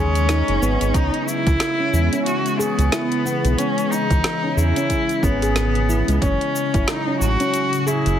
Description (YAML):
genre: organic downtempo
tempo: 91 BPM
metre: 4/4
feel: swing 59% on 16ths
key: C# minor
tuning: A4 = 443 Hz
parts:
  - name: rich cello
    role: melody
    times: 0.0-8.2 s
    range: B3 to F#4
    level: -22 LUFS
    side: left 1 dB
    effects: ping-pong delay
  - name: ethereal airy pad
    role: sustained chords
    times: 0.0-8.2 s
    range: A2 to G#4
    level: -26 LUFS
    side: left 1 dB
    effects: ensemble chorus, built-in reverb, vintage 12-bit sampler grit, sidechain pumping
  - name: handpan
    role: arpeggios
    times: 0.0-8.1 s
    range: E3 to G#4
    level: -25 LUFS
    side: equal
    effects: vintage 12-bit sampler grit, ping-pong delay
  - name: round analog bass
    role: bass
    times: 0.0-8.2 s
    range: F#1 to E2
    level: -20 LUFS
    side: equal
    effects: sidechain pumping
  - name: deep house drum kit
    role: drums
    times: 0.2-8.2 s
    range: hi-hat, shaker, snare drum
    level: -27 LUFS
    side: equal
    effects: none
  - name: electronic kick drum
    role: drums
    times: 0.9-6.9 s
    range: none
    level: -21 LUFS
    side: equal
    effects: none
room: light reverb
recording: heavily compressed radio sound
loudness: -17 LUFS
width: side -10 dB against mid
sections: 0.0-8.2 A section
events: none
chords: 0.0 G#7sus4; 0.9 C#m7; 6.2 F#m